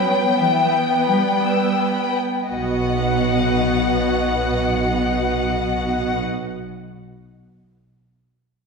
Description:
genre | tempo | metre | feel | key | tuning
classical, slow romantic movement for string orchestra | 38-49 BPM | 3/4 | rubato | B major | A4 = 440 Hz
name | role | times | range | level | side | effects
rich studio violin section | melody | 0.0-6.2 s | F#5 to G5 | -22 LUFS | left 4 dB | none
rich studio violin section | second line | 0.0-6.2 s | F#4 to E6 | -24 LUFS | left 1 dB | none
rich studio viola section | accompaniment | 0.0-6.2 s | B3 | -27 LUFS | equal | none
rich studio cello section | bass | 0.0-6.2 s | B2 to G3 | -24 LUFS | right 2 dB | none
rich studio double bass section | bass | 2.5-6.2 s | B1 | -24 LUFS | right 2 dB | none
room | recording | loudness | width
wet recital hall reverb, RT60 1.8 s | recorded in a church or concert hall | -17 LUFS | side -4 dB against mid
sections
0.0-2.5 A section; 2.5-6.4 B section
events
slowing down 0.0-2.5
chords
0.0 Em; 2.5 B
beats
1.06 | 2.50 3.77 5.07

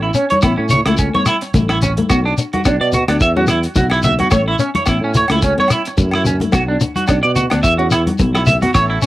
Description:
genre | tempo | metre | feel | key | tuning
highlife guitar band | 108 BPM | 4/4 | swing 55% on 16ths | A major | A4 = 443 Hz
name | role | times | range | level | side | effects
nylon-string guitar | accompaniment | 0.0-9.1 s | E3 to D4 | -22 LUFS | left 4 dB | none
clean electric guitar | arpeggios | 0.0-9.1 s | C#4 to E5 | -17 LUFS | right 2 dB | analog chorus, tape echo
sustaining fretless electric bass | bass | 0.0-9.0 s | A1 to B2 | -18 LUFS | equal | none
shekere | percussion | 0.1-9.1 s | none | -20 LUFS | left 3 dB | none
damped 70s drum kit | drums | 0.2-9.1 s | hi-hat, kick drum, rim click | -19 LUFS | equal | cassette tape
congas | percussion | 0.3-8.7 s | none | -21 LUFS | left 1 dB | none
agogo bells | percussion | 0.4-8.9 s | none | -28 LUFS | left 3 dB | none
combo organ | sustained chords | 8.7-9.1 s | E4 to C#5 | -28 LUFS | left 2 dB | none
room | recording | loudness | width
light reverb | home recording on cassette | -12 LUFS | side -16 dB against mid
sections
0.0-9.1 A section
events
none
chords
0.0 A; 2.1 Bm; 3.2 Esus2; 4.3 A; 6.5 Bm; 7.6 Esus2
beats
0.43 0.98 1.54 | 2.10 2.65 3.21 3.76 | 4.32 4.87 5.42 5.98 | 6.53 7.09 7.64 8.20 | 8.75

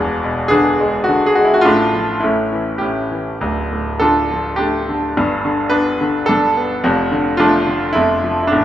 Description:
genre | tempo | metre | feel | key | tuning
classical, lyrical solo piano | 106 BPM | 3/4 | rubato | D minor | A4 = 439 Hz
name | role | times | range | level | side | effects
bright concert grand piano | solo | 0.0-8.6 s | D1 to B4 | -14 LUFS | equal | none
room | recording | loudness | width
moderate recital hall reverb, RT60 1.7 s | minimal, uncompressed stereo recording | -14 LUFS | side -12 dB against mid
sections
0.0-8.6 A section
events
none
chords
0.0 E7; 1.6 Dm/A; 2.2 A; 3.4 Dm; 5.1 Gadd9; 6.8 Dm/F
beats
0.51 1.07 | 1.64 2.22 2.80 | 3.40 4.00 4.58 | 5.14 5.71 6.27 | 6.83 7.38 7.95 | 8.51

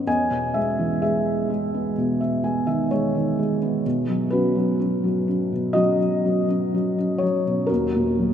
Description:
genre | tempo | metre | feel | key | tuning
classical, lyrical solo piano | 63 BPM | 4/4 | rubato | B major | A4 = 440 Hz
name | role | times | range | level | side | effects
felt-muted upright piano | solo | 0.0-8.3 s | D#2 to G#5 | -20 LUFS | equal | none
room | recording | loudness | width
wet cathedral reverb, RT60 6.8 s | in a vast, echoing space, nothing above 10.5 kHz | -20 LUFS | side -9 dB against mid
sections
0.0-8.3 A section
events
felt piano fill 2.0-3.8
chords
0.1 Emaj7; 3.8 Bsus2; 7.7 D#m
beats
| 0.07 1.02 1.96 2.90 | 3.85 4.79 5.75 6.72 | 7.69

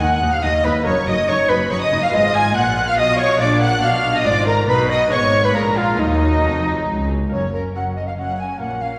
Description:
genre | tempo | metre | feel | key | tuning
classical, baroque-style concerto movement with solo episodes | 141 BPM | 3/4 | straight | Eb minor | A4 = 440 Hz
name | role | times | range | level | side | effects
mellow silver concert flute | melody | 0.0-9.0 s | Eb4 to G#5 | -22 LUFS | equal | none
warm studio violin section | melody | 0.0-9.0 s | A#4 to Ab6 | -28 LUFS | equal | none
warm symphonic violin section | second line | 0.0-9.0 s | Eb4 to Ab5 | -25 LUFS | equal | none
lute | accompaniment | 0.0-9.0 s | Eb2 to Bb4 | -30 LUFS | equal | none
warm chamber viola section | accompaniment | 0.0-9.0 s | Gb3 to F4 | -31 LUFS | equal | none
dark chamber cello section | bass | 0.0-9.0 s | Db2 to Cb3 | -27 LUFS | equal | none
rich chamber double bass section | bass | 0.0-9.0 s | F1 to Eb2 | -26 LUFS | equal | none
room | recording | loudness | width
wet scoring stage reverb, RT60 1.5 s | recorded in a church or concert hall | -18 LUFS | mono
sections
0.0-7.3 A section; 7.3-9.0 B section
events
none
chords
0.0 Eb5; 0.9 Ebm/Gb; 2.1 Fdim/Ab; 3.4 Bb7; 4.7 B; 5.1 Abm; 5.6 Bb7; 6.0 Ebm; 7.3 F#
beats
0.01 0.43 | 0.86 1.28 1.71 | 2.13 2.56 2.98 | 3.41 3.83 4.26 | 4.69 5.12 5.55 | 6.00 6.44 6.88 | 7.32 7.75 8.18 | 8.61

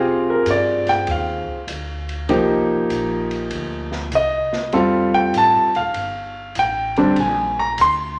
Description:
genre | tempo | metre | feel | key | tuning
jazz piano trio | 98 BPM | 4/4 | swing 68% on 8ths | unclear | A4 = 439 Hz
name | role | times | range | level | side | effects
warm concert grand piano | melody | 0.0-8.2 s | D3 to C6 | -20 LUFS | equal | none
upright bass | bass | 0.0-8.2 s | Eb1 to C3 | -33 LUFS | equal | none
open jazz drum kit | drums | 0.5-8.0 s | hi-hat, kick drum, ride cymbal, snare drum | -35 LUFS | equal | none
room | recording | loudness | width
wet large studio reverb, RT60 1.1 s | none | -19 LUFS | mono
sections
0.0-8.2 A section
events
grand piano solo 0.0-8.2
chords
0.0 Cm7; 4.7 Fadd9; 7.2 Bb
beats
0.46 1.07 1.68 | 2.29 2.90 3.51 4.12 | 4.73 5.34 5.95 6.56 | 7.17 7.78

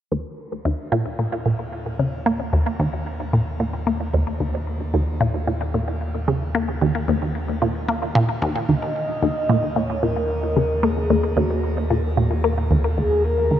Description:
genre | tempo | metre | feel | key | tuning
ambient, sequencer-driven space music | 112 BPM | 4/4 | straight | unclear | A4 = 440 Hz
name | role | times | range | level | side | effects
resonant blip pluck | riff | 0.1-13.6 s | Eb2 to Bb3 | -21 LUFS | equal | phaser, shimmer reverb, tape echo
warm sub bass | bass | 0.1-13.6 s | Eb2 | -26 LUFS | equal | none
mellow horn-like synth lead | melody | 8.7-13.6 s | Gb4 to Eb5 | -24 LUFS | equal | chorus, shimmer reverb, tape echo
room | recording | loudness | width
moderate huge ambient reverb, RT60 7.8 s | none | -20 LUFS | side -10 dB against mid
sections
0.1-8.7 A section; 8.7-13.6 B section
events
fade-in on sub bass 0.1-8.7; filter sweep on synth arpeggio sound 0.1-8.7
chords
0.1 Eb5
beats
| 0.12 0.65 1.19 1.72 | 2.26 2.80 3.33 3.87 | 4.40 4.94 5.47 6.01 | 6.55 7.08 7.62 8.15 | 8.69 9.22 9.76 10.30 | 10.83 11.37 11.90 12.44 | 12.97 13.51

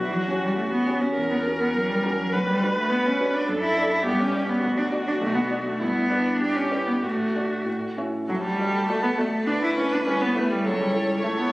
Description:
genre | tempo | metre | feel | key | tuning
quick classical-period movement for piano quartet | 102 BPM | 2/4 | rubato | B minor, D major from 3.5 s | A4 = 444 Hz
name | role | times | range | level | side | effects
rich cello | second line | 0.0-11.5 s | E3 to E4 | -25 LUFS | equal | none
rich viola | accompaniment | 0.0-11.5 s | F#3 to C#5 | -27 LUFS | equal | none
warm concert grand piano | accompaniment | 0.0-11.5 s | B1 to E5 | -29 LUFS | equal | none
rich violin | melody | 0.3-11.5 s | A4 to D5 | -32 LUFS | left 1 dB | none
room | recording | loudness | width
moderate concert hall reverb, RT60 1.7 s | recorded on a phone in the room, club reverb | -21 LUFS | side -19 dB against mid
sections
0.0-8.3 A section; 8.3-11.5 B section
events
none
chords
0.0 C#dim/E; 1.2 F#7/E; 2.3 Bm/D; 3.5 D/F#; 4.1 G5; 4.6 D; 5.2 Bm; 5.8 Em7/G; 7.0 D/A; 7.7 A; 8.3 D; 9.5 Em7/D; 10.6 A/C#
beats
| 0.00 0.58 | 1.18 1.76 | 2.34 2.92 | 3.49 4.07 | 4.64 5.22 | 5.81 6.41 | 7.04 7.67 | 8.29 8.89 | 9.48 10.06 | 10.64 11.23

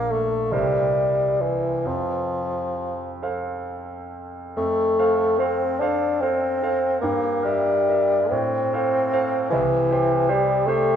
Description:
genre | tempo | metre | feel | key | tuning
classical, romantic duo for bassoon and grand piano | 43-52 BPM (dotted quarters) | 6/8 | rubato | F major | A4 = 445 Hz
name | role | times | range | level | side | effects
mellow bassoon | melody | 0.0-11.0 s | E3 to D4 | -21 LUFS | left 2 dB | none
bright concert grand piano | accompaniment | 0.0-11.0 s | Bb1 to G5 | -25 LUFS | right 3 dB | none
room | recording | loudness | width
wet concert hall reverb, RT60 2.0 s | minimal, uncompressed stereo recording | -20 LUFS | side -8 dB against mid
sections
0.0-4.6 A section; 4.6-11.0 B section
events
none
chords
0.0 Bb; 0.5 C7; 1.9 F; 7.0 Edim/G; 8.3 F/A; 9.5 C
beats
0.52 | 1.86 3.23 | 4.57 5.81 | 7.02 8.32 | 9.52 10.68

